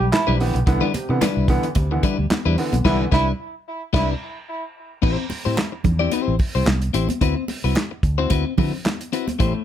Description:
funk; 110 BPM; 4/4; swing 56% on 16ths; A dorian; A4 = 439 Hz
bright trombone; second line; 0.0-4.1 s; E4; -27 LUFS; right 4 dB; tape echo
clean electric guitar; accompaniment; 0.0-9.6 s; G3 to D5; -23 LUFS; left 7 dB
vintage muted fingered electric bass; bass; 0.0-9.5 s; A1 to D3; -22 LUFS; equal
clear upright piano; stabs; 0.1-3.0, 9.4-9.6 s; A2 to B3; -25 LUFS; right 2 dB
warm soul drum kit; drums; 0.1-9.5 s; crash cymbal, handclaps, hi-hat, kick drum, snare drum; -23 LUFS; equal
congas; percussion; 0.9-9.4 s; -28 LUFS; right 3 dB
light reverb; -18 LUFS; side -10 dB against mid
0.0-5.0 A section; 5.0-9.6 B section
band accent 2.9-5.0
0.0 Cmaj9; 5.0 Am7; 7.2 D13

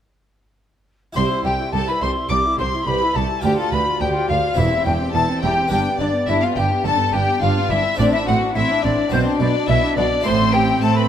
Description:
classical, baroque-style concerto movement with solo episodes; 106 BPM; 4/4; straight; C major; A4 = 440 Hz
harpsichord; accompaniment; 1.1-11.1 s; C2 to A4; -28 LUFS; right 1 dB
mellow alto recorder; melody; 1.2-11.1 s; C5 to D6; -21 LUFS; left 3 dB
rich chamber violin section; melody; 1.2-11.1 s; C5 to D6; -27 LUFS; left 4 dB
rich chamber violin section; second line; 1.2-11.0 s; C4 to D5; -26 LUFS; left 4 dB
dark chamber viola section; accompaniment; 1.2-11.1 s; B3 to G4; -25 LUFS; equal
warm chamber cello section; bass; 1.2-11.1 s; C2 to A3; -24 LUFS; right 3 dB
warm chamber double bass section; bass; 1.2-11.1 s; E1 to A2; -24 LUFS; right 4 dB
moderate concert hall reverb, RT60 1.9 s; close, detailed microphones; -16 LUFS; side -9 dB against mid
1.2-11.1 A section
1.2 C; 3.4 G5/D; 4.6 C/E; 5.7 G; 8.0 D5/A; 9.1 Cmaj9/B; 10.3 Am

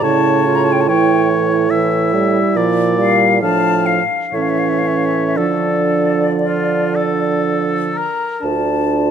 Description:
classical, slow romantic movement for wind quintet; 54-74 BPM; 3/4; rubato; D minor; A4 = 440 Hz
bright concert flute; melody; 0.0-9.1 s; D5 to Bb5; -19 LUFS; left 7 dB
clear oboe; second line; 0.0-8.4 s; F4 to F5; -21 LUFS; left 2 dB
warm French horn; accompaniment; 0.0-9.1 s; C#3 to D4; -20 LUFS; right 2 dB
warm clarinet; accompaniment; 0.0-9.1 s; C#4 to F4; -21 LUFS; right 11 dB
mellow bassoon; bass; 0.0-9.1 s; D2 to D3; -19 LUFS; right 4 dB
moderate concert hall reverb, RT60 2.1 s; close, detailed microphones; -13 LUFS; side -8 dB against mid
0.0-8.4 A section
0.0 A7; 2.6 Bb; 3.4 Dm/A; 4.3 A; 5.4 Dm

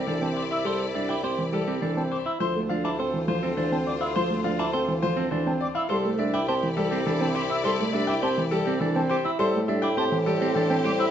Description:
classical, minimalist pattern music; 103 BPM; 3/4; straight; C major; A4 = 440 Hz
bright grand piano; melody; 0.0-11.1 s; G4 to A5; -31 LUFS; left 9 dB
bright studio string section; sustained chords; 0.0-11.1 s; E4 to D5; -34 LUFS; left 4 dB
clean electric guitar; arpeggios; 0.0-11.1 s; C4 to C5; -30 LUFS; right 5 dB
dark bassoon; bass; 0.0-11.1 s; C2 to A2; -31 LUFS; equal
dark baby grand piano; accompaniment; 0.1-11.0 s; E3 to C4; -28 LUFS; right 1 dB
silver concert flute; arpeggios; 0.2-11.1 s; A5 to E6; -34 LUFS; left 2 dB
moderate recital hall reverb, RT60 1.6 s; nothing above 8.0 kHz; -23 LUFS; side -9 dB against mid
0.0-11.1 A section
0.0 Cadd9; 2.4 Dm7; 5.9 Cadd9; 9.4 Am7

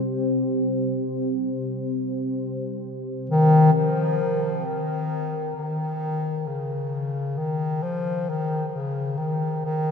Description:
dark ambient drone; free time; A4 = 440 Hz
dark analog pad; sustained chords; 0.0-3.8 s; C4 to C5; -27 LUFS; equal; chorus, phaser
mellow bass clarinet; melody; 3.3-9.9 s; Db3 to F3; -22 LUFS; left 2 dB; tape echo
wet huge ambient reverb, RT60 7.6 s; cassette tape; -22 LUFS; side -6 dB against mid
0.0-3.8 A section; 3.8-9.9 B section
fade-in on bass clarinet 3.8-9.9
0.0 C5; 3.8 N.C.

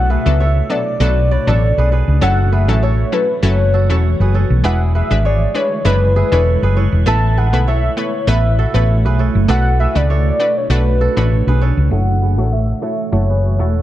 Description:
afrobeats; 99 BPM; 4/4; swing 55% on 16ths; F# minor; A4 = 441 Hz
warm velvety synth lead; melody; 0.0-13.8 s; B4 to A5; -20 LUFS; left 1 dB; chorus, low-pass filter, analog delay
analog pluck; accompaniment; 0.0-13.8 s; F#3 to C#5; -23 LUFS; left 1 dB; chorus, low-pass filter
granular cloud pad; sustained chords; 0.0-13.8 s; B2 to F#4; -24 LUFS; right 1 dB; built-in reverb, low-pass filter
kora; riff; 0.0-13.8 s; E4 to E5; -25 LUFS; right 7 dB; low-pass filter, analog delay
hollow-body short-scale fingered electric bass; bass; 0.0-13.8 s; E1 to C#2; -14 LUFS; equal
light reverb; echo-heavy mix; -12 LUFS; side -13 dB against mid
0.0-11.9 A section; 11.9-13.8 B section
0.0 Bm7; 2.2 F#m7; 4.6 E7; 7.1 Asus2; 9.5 Bm7; 11.9 F#m7

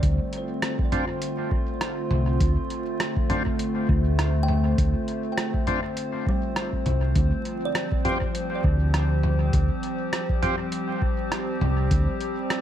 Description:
ambient dub; 101 BPM; 4/4; swing 56% on 16ths; D minor; A4 = 439 Hz
warbly tape-like pad; sustained chords; 0.0-12.6 s; D3 to C5; -28 LUFS; left 1 dB; chorus, built-in reverb
kalimba; arpeggios; 0.0-9.8 s; G3 to G5; -36 LUFS; right 3 dB; tape echo
hollow-body short-scale fingered electric bass; bass; 0.0-12.1 s; C2 to D2; -22 LUFS; equal
electronic kick drum; drums; 0.0-12.0 s; -26 LUFS; equal; overdrive
lo-fi sampler-style drum kit; drums; 0.0-12.6 s; hi-hat, rim click, toms; -31 LUFS; equal; dub echo
overdriven tonewheel organ; stabs; 0.9-10.6 s; C4 to G4; -32 LUFS; equal; slow rotary speaker, dub echo
light reverb; vinyl crackle; -22 LUFS; side -10 dB against mid
0.0-12.6 A section
0.0 Dm7; 7.2 Csus4

